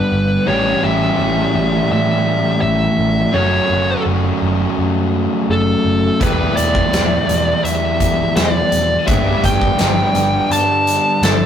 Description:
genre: rock, shoegaze and dream pop.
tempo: 84 BPM.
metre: 4/4.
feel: straight.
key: unclear.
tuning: A4 = 440 Hz.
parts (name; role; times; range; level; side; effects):
fuzz lead guitar; melody; 0.0-11.5 s; A4 to A5; -18 LUFS; equal; distortion.
biting overdriven guitar; riff; 0.0-11.5 s; E2 to G4; -20 LUFS; left 4 dB; none.
overdriven semi-hollow guitar; riff; 0.0-11.5 s; A2 to G4; -19 LUFS; right 3 dB; none.
vintage muted picked electric bass; bass; 0.1-11.5 s; E1 to A2; -21 LUFS; equal; none.
huge arena drum kit; drums; 6.2-11.4 s; hi-hat, kick drum, snare drum; -18 LUFS; equal; none.
room: wet stone room reverb, RT60 0.9 s.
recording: rough rehearsal-room recording, tube saturation.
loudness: -13 LUFS.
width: side -9 dB against mid.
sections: 0.0-11.5 A section.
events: none.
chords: 0.5 A7; 3.3 F#m; 6.2 Em7; 9.1 G.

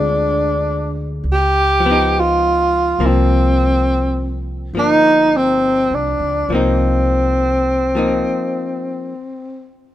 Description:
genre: jazz ballad.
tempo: 68 BPM.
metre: 4/4.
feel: swing 66% on 8ths.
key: C minor.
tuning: A4 = 441 Hz.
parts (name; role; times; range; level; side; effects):
breathy tenor saxophone; melody; 0.0-9.7 s; C4 to G4; -16 LUFS; equal; none.
archtop guitar, miked and amplified; accompaniment; 0.0-9.1 s; D3 to F4; -22 LUFS; left 3 dB; none.
upright bass; bass; 0.0-8.2 s; G1 to D2; -20 LUFS; right 1 dB; none.
room: light reverb.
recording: minimal, uncompressed stereo recording.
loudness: -14 LUFS.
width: side -13 dB against mid.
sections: 0.0-9.9 A section.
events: stop 8.2-9.9.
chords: 0.0 Dm7b5; 1.2 Db9; 3.0 Cm7.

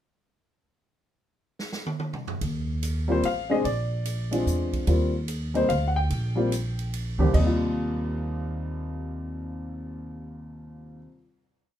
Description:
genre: jazz piano trio.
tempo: 146 BPM.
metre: 3/4.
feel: swing 65% on 8ths.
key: Eb major.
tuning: A4 = 440 Hz.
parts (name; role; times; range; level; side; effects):
swinging big-band drum kit; drums; 1.6-9.7 s; crash cymbal, cymbal swell, hi-hat, kick drum, ride cymbal, snare drum, toms; -35 LUFS; right 2 dB; none.
upright bass; bass; 2.4-11.1 s; A1 to Fb2; -27 LUFS; equal; none.
warm upright piano; melody; 3.1-11.2 s; Eb2 to G5; -27 LUFS; left 2 dB; none.
room: moderate studio reverb, RT60 0.7 s.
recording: minimal, uncompressed stereo recording.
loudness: -24 LUFS.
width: side -11 dB against mid.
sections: 1.2-2.4 pickup bar; 2.4-7.3 A section; 7.3-9.8 final chord.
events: drum fill 1.6-2.4.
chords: 1.2 N.C.; 2.4 Ebsus2; 3.6 Bb7; 4.9 Eb69.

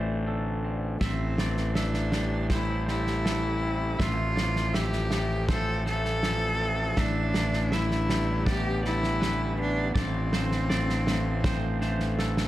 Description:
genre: post-rock.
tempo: 80 BPM.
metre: 4/4.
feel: straight.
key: A minor.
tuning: A4 = 440 Hz.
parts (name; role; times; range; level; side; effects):
mellow French horn section; sustained chords; 0.0-12.5 s; C4 to F5; -39 LUFS; right 1 dB; none.
electric guitar through a small old amp; arpeggios; 0.0-12.5 s; A2 to C4; -35 LUFS; left 3 dB; warbly pitch drift, slapback echo.
twangy electric guitar; arpeggios; 0.0-12.5 s; A4 to E5; -40 LUFS; right 2 dB; slapback echo.
fuzz fingered electric bass; bass; 0.0-12.5 s; A1; -28 LUFS; equal; overdrive.
bright cello; melody; 1.0-12.2 s; C4 to A4; -31 LUFS; equal; slapback echo.
loose indie drum kit; drums; 1.0-12.5 s; kick drum, snare drum; -30 LUFS; right 1 dB; none.
room: light reverb, small room ambience.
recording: none.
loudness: -25 LUFS.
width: side -14 dB against mid.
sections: 0.0-12.5 A section.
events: drum fill 12.2.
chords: 0.0 Dm7/A; 1.0 Am7; 4.0 Fmaj7/A; 7.0 Em7/A; 10.0 Dm7/A.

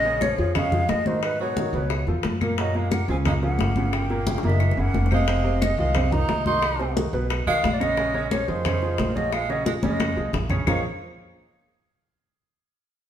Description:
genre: Afro-Cuban jazz.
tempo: 178 BPM.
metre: 4/4.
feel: straight.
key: Bb minor.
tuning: A4 = 440 Hz.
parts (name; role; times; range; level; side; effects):
mellow hollow silver concert flute; melody; 0.0-10.8 s; Cb5 to C6; -27 LUFS; equal; none.
warm tenor saxophone; second line; 0.0-10.8 s; Ab2 to Eb4; -31 LUFS; right 4 dB; none.
warm grand piano; accompaniment; 0.0-10.8 s; Bb2 to Db5; -28 LUFS; right 2 dB; none.
upright bass; bass; 0.0-10.8 s; F1 to Ab2; -26 LUFS; equal; none.
bongos; percussion; 0.0-10.8 s; none; -33 LUFS; left 5 dB; none.
congas; percussion; 0.0-10.8 s; none; -28 LUFS; left 1 dB; none.
claves; percussion; 0.2-10.8 s; none; -35 LUFS; left 3 dB; none.
room: wet stone room reverb, RT60 1.2 s.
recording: band playing live in one room.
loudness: -21 LUFS.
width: side -10 dB against mid.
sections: 0.0-10.7 A section; 10.7-12.0 B section.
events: drum fill 4.3-5.3, 9.8-10.7.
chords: 0.0 Bbm7; 1.2 Abm7; 1.9 Db7alt; 2.6 Gbmaj7; 3.9 Gm7b5; 4.6 Gb7; 5.3 Fm7; 6.6 Cdim; 7.3 B; 8.0 Bbm7.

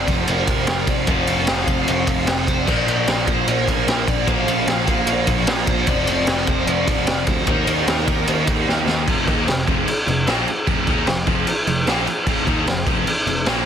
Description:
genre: hard rock.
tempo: 150 BPM.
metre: 4/4.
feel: straight.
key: unclear.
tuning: A4 = 441 Hz.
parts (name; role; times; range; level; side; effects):
dark smooth lead guitar; melody; 0.0-8.6 s; Bb4 to F5; -27 LUFS; left 2 dB; overdrive, tape echo.
bright tonewheel organ; sustained chords; 0.0-13.7 s; F3 to C5; -36 LUFS; equal; none.
cranked stack guitar; riff; 0.0-13.7 s; F2 to Eb4; -25 LUFS; right 13 dB; overdrive.
overdriven semi-hollow guitar; riff; 0.0-13.7 s; F2 to Eb4; -27 LUFS; left 12 dB; none.
tight distorted guitar; riff; 0.0-13.7 s; F2 to Eb4; -27 LUFS; right 1 dB; distortion.
picked electric bass; bass; 0.0-13.7 s; F1 to Eb2; -26 LUFS; equal; none.
raw garage drum kit; drums; 0.1-13.6 s; crash cymbal, kick drum, ride cymbal, snare drum; -19 LUFS; equal; none.
room: studio reverb.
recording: dense, heavily limited modern master.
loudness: -16 LUFS.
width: side -8 dB against mid.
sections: 0.0-9.1 A section; 9.1-13.7 B section.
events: drum fill 8.7-9.1.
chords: 0.0 F5; 2.7 Bb; 5.9 F5; 7.5 Eb; 9.1 Fm.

